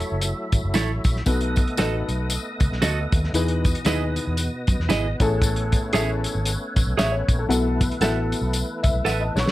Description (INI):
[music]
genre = uptempo 1960s-style soul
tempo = 116 BPM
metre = 4/4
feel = swing 58% on 8ths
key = B mixolydian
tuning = A4 = 440 Hz
[part]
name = dark upright piano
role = accompaniment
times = 0.0-9.5 s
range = A2 to C#6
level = -26 LUFS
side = left 3 dB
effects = none
[part]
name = overdriven tonewheel organ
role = sustained chords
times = 0.0-9.5 s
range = B2 to D#5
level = -31 LUFS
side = equal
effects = chorus vibrato, slow rotary speaker
[part]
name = warm soul drum kit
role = drums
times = 0.0-9.5 s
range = hi-hat, kick drum, snare drum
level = -23 LUFS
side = equal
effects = none
[part]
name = tambourine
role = percussion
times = 0.0-9.5 s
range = none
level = -35 LUFS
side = left 5 dB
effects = none
[part]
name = vintage muted fingered electric bass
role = bass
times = 0.1-9.4 s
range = F#1 to F#2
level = -25 LUFS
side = equal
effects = none
[part]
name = clean electric guitar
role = stabs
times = 0.7-9.2 s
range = E4 to E5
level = -25 LUFS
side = right 6 dB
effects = none
[sound]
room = light reverb, studio reverb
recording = none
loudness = -20 LUFS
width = side -16 dB against mid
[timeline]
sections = 0.0-9.5 A section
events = upright piano fill 8.5-9.5; drum fill 9.1-9.5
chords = 0.0 F#m7; 1.3 B7; 3.3 Emaj7; 5.2 Amaj7; 7.5 B7sus4